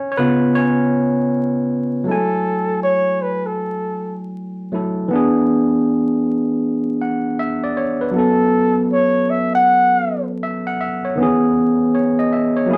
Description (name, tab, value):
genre	R&B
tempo	79 BPM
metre	4/4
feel	swing 64% on 16ths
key	F# minor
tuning	A4 = 438 Hz
part	overdriven tine electric piano	accompaniment	0.0-12.8 s	C#3 to G#5	-19 LUFS	equal	none
part	breathy flugelhorn	melody	2.1-10.3 s	A4 to F#5	-19 LUFS	equal	none
room	wet studio reverb, RT60 0.6 s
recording	band playing live in one room, vinyl crackle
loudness	-18 LUFS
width	mono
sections	0.0-2.1 A section; 2.1-12.8 B section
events	tine electric piano solo 0.0-2.1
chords	0.0 C#7; 2.1 F#m9; 5.1 E7; 8.1 A69; 11.2 C#m7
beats	0.54 1.30 | 2.06 2.82 3.58 4.34 | 5.10 5.86 6.62 7.38 | 8.14 8.90 9.66 10.42 | 11.18 11.94 12.70